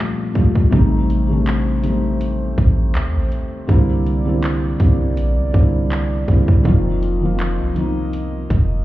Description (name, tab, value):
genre	contemporary R&B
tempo	81 BPM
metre	4/4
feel	swing 54% on 16ths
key	unclear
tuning	A4 = 443 Hz
part	felt-muted upright piano	accompaniment	0.0-8.8 s	Bb2 to F4	-20 LUFS	left 1 dB	none
part	trap drum kit	drums	0.4-8.7 s	handclaps, hi-hat, kick drum	-17 LUFS	equal	none
part	warm French horn section	sustained chords	0.7-8.8 s	A3 to Eb5	-31 LUFS	right 3 dB	sidechain pumping
part	warm 808-style bass	bass	0.7-8.8 s	F1 to Eb2	-19 LUFS	equal	none
room	studio ambience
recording	heard muffled through a wall, club reverb, EQ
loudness	-15 LUFS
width	side -16 dB against mid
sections	0.0-8.8 A section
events	none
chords	0.0 Gm9; 0.7 Am7b5; 3.7 C9; 6.7 F7sus4